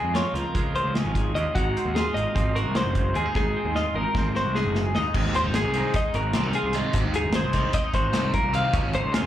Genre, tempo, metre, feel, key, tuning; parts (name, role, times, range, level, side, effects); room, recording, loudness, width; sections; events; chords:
math rock and midwest emo; 301 BPM (eighths); 9/8; straight; A4 = 441 Hz
twelve-string electric guitar; accompaniment; 0.0-9.3 s; Ab2 to Ab4; -30 LUFS; right 5 dB; spring reverb, slapback echo
twelve-string electric guitar; arpeggios; 0.0-9.3 s; Gb4 to F5; -27 LUFS; left 2 dB; slapback echo
fuzz picked electric bass; bass; 0.0-9.3 s; Gb1 to F2; -27 LUFS; equal; overdrive
modern studio drum kit; drums; 0.1-9.2 s; crash cymbal, hi-hat, kick drum, snare drum; -27 LUFS; equal
biting overdriven guitar; riff; 5.1-9.2 s; Db3 to F4; -31 LUFS; right 1 dB; phaser, slapback echo
small room ambience; live gig heard through the venue's PA, club reverb; -22 LUFS; side -12 dB against mid
0.0-5.2 A section; 5.2-9.3 B section
drum fill 3.4-5.2
0.0 Bbm9; 1.6 Ab7; 5.2 Ab9; 8.7 Dbmaj9